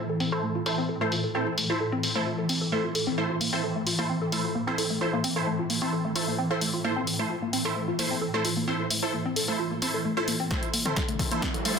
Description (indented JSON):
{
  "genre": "driving peak-time techno",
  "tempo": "131 BPM",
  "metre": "4/4",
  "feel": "straight",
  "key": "A minor",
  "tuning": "A4 = 439 Hz",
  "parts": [
    { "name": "woody wave-folded pluck", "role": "riff", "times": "0.0-11.7 s", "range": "A3 to A4", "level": "-31 LUFS", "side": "equal", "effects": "wide subtle chorus, sidechain pumping, digital delay" },
    { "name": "swarming drone", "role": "drone", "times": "0.0-11.8 s", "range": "A2 to E3", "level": "-32 LUFS", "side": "equal", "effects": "built-in reverb, sidechain pumping" },
    { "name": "punchy analog drum machine", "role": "drums", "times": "0.2-11.7 s", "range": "hi-hat, snare drum, toms", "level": "-30 LUFS", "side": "left 1 dB", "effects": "low-pass filter on cymbals, low-pass filter on hats, low-pass filter on snare, low-pass filter on toms" },
    { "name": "rave stab", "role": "stabs", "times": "0.3-11.8 s", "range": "E4 to C5", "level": "-30 LUFS", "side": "right 1 dB", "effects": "chorus, built-in reverb, phaser, sidechain pumping, ping-pong delay" },
    { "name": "electronic kick drum", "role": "drums", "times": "10.5-11.5 s", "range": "none", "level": "-31 LUFS", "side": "equal", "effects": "none" },
    { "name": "riser", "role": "sound effects", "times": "11.1-11.8 s", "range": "none", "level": "-34 LUFS", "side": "equal", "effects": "none" }
  ],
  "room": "moderate plate reverb, RT60 1.4 s",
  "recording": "dense, heavily limited modern master",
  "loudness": "-25 LUFS",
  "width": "side -6 dB against mid",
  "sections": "0.0-10.5 A section; 10.5-11.8 B section",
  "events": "build-up 10.5-11.8; drum fill 10.5-11.8; riser 11.1-11.8",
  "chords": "0.0 Am",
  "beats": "0.43 0.89 | 1.35 1.81 2.26 2.72 | 3.18 3.64 4.10 4.55 | 5.01 5.47 5.93 6.39 | 6.84 7.30 7.76 8.22 | 8.68 9.13 9.59 10.05 | 10.51 10.97 11.42"
}